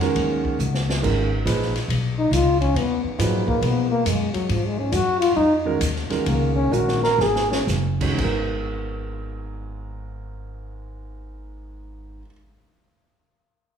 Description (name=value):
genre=modal jazz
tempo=117-139 BPM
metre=4/4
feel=swing 66% on 8ths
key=G# dorian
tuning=A4 = 438 Hz
part: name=vibraphone with soft mallets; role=melody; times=0.0-0.6 s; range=F#5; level=-36 LUFS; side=right 6 dB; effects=none
part: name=dark trombone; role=second line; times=0.0-7.6 s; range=D#3 to A#4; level=-21 LUFS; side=left 2 dB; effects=none
part: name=warm grand piano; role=accompaniment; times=0.0-12.3 s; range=G#2 to C#5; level=-27 LUFS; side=right 4 dB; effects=none
part: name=upright bass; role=bass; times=0.0-12.2 s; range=F#1 to B2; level=-25 LUFS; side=equal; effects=none
part: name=open jazz drum kit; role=drums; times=0.0-8.3 s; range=crash cymbal, hi-hat, kick drum, ride cymbal, snare drum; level=-29 LUFS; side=equal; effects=none
room=wet recital hall reverb, RT60 1.4 s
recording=recorded in a church or concert hall, studio reverb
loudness=-19 LUFS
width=side -8 dB against mid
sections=0.0-1.0 A section; 1.0-8.2 B section; 8.2-12.3 C section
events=drum fill 0.6-1.0, 6.7-7.7; trombone solo 1.0-8.2; slowing down 4.5-8.2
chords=0.0 F#add9; 1.0 G#m9; 4.5 F#add9; 8.2 G#m9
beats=0.16 0.59 | 1.03 1.46 1.89 2.32 | 2.76 3.19 3.62 4.05 | 4.49 4.92 5.36 5.80 | 6.25 6.71 7.18 7.67 | 8.17 8.68 9.20 9.71 | 10.22 10.73 11.24 11.75